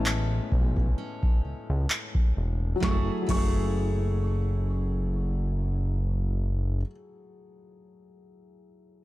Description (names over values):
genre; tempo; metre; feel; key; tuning
contemporary R&B; 65 BPM; 4/4; swing 54% on 16ths; F# minor; A4 = 440 Hz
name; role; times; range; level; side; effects
warm grand piano; melody; 0.0-6.9 s; A5 to C#6; -41 LUFS; right 1 dB; ping-pong delay
felt-muted upright piano; accompaniment; 0.0-9.0 s; A2 to B4; -35 LUFS; left 5 dB; none
picked steel-string acoustic guitar; arpeggios; 0.0-6.9 s; F#3 to B4; -37 LUFS; right 6 dB; ping-pong delay
fat analog bass; bass; 0.0-6.8 s; E1 to C#2; -26 LUFS; equal; none
downlifter; sound effects; 0.0-2.8 s; none; -52 LUFS; equal; none
booming analog drum machine; drums; 0.1-3.6 s; crash cymbal, handclaps, kick drum, snare drum; -25 LUFS; equal; none
room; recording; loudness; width
studio reverb; dark, warm production; -25 LUFS; side -17 dB against mid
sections
0.0-2.8 A section; 2.8-6.5 B section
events
none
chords
0.0 Amaj9; 2.8 F#m9